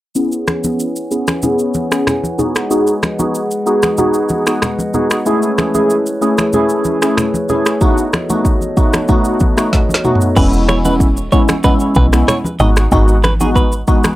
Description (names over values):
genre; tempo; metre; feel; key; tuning
afrobeats; 94 BPM; 4/4; straight; E major; A4 = 440 Hz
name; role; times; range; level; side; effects
glassy digital keys; accompaniment; 0.2-14.1 s; G#3 to G#4; -15 LUFS; equal; chorus, low-pass filter
glass harmonica; sustained chords; 0.2-10.3 s; G#3 to G#5; -21 LUFS; left 1 dB; low-pass filter
afro-pop drum kit; drums; 0.2-14.2 s; crash cymbal, finger snaps, kick drum, rim click, shaker, snare drum, toms; -16 LUFS; equal; none
congas; percussion; 0.5-14.2 s; none; -23 LUFS; equal; none
direct-recorded clean electric guitar; riff; 10.4-13.7 s; G#4 to D#5; -19 LUFS; right 2 dB; tremolo, tape echo
woody log drum bass; bass; 10.4-13.8 s; E1 to B1; -14 LUFS; equal; none
room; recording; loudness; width
light reverb; dry, gritty hardware recording; -12 LUFS; side -16 dB against mid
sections
0.2-10.4 A section; 10.4-14.2 B section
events
filter sweep 0.2-10.4; drum fill 9.7-10.4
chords
0.2 E6; 2.4 G#m7; 5.3 Amaj7; 7.8 B7; 10.4 E6; 12.6 G#m7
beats
| 0.15 0.79 1.43 2.07 | 2.71 3.35 3.98 4.62 | 5.26 5.90 6.54 7.17 | 7.81 8.45 9.09 9.73 | 10.37 11.01 11.64 12.28 | 12.92 13.56